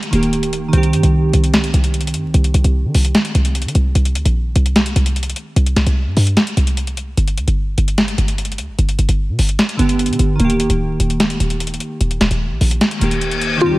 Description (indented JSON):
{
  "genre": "hip hop, trap",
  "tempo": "149 BPM",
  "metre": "4/4",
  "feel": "half-time",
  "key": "C minor",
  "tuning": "A4 = 439 Hz",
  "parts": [
    { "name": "glassy digital keys", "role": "accompaniment", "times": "0.0-7.2, 9.8-13.8 s", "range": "D3 to G4", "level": "-20 LUFS", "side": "right 2 dB", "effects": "chorus, low-pass filter" },
    { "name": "booming analog drum machine", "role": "drums", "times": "0.0-13.5 s", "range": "hi-hat, snare drum", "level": "-19 LUFS", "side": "equal", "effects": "none" },
    { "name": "short 808-style bass", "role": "bass", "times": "0.1-13.6 s", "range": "D1 to Eb3", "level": "-16 LUFS", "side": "equal", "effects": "none" },
    { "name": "reverse cymbal and impact", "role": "sound effects", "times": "13.0-13.8 s", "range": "none", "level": "-21 LUFS", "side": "left 5 dB", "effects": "none" },
    { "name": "mallet-like synth pluck", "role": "melody", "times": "13.6-13.8 s", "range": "F4", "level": "-14 LUFS", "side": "left 1 dB", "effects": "chorus, phaser" },
    { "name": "dark analog pad", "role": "sustained chords", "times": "13.6-13.8 s", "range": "Eb3 to G4", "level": "-20 LUFS", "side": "left 3 dB", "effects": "chorus" }
  ],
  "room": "light reverb",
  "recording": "vinyl crackle",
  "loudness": "-14 LUFS",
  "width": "side -19 dB against mid",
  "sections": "0.0-13.6 A section",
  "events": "reverse cymbal 13.0-13.6; impact 13.6",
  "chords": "0.0 Eb; 0.7 Cm; 7.2 G; 10.4 Eb"
}